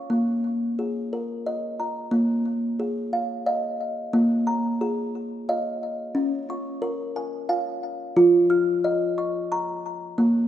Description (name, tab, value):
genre	world meditative, meditative tuned percussion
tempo	60 BPM (dotted quarters)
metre	6/8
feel	straight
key	Bb minor pentatonic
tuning	A4 = 440 Hz
part	kalimba	solo	0.0-10.5 s	F3 to F6	-22 LUFS	equal	ping-pong delay
room	wet echo chamber reverb, RT60 2.2 s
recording	none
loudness	-22 LUFS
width	side -11 dB against mid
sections	0.0-2.1 A section; 2.1-10.5 B section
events	none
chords	0.1 Bbm; 2.1 Bb5; 6.2 Db; 8.2 Fm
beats	| 0.10 1.11 | 2.12 3.13 | 4.14 5.15 | 6.15 7.16 | 8.17 9.18 | 10.18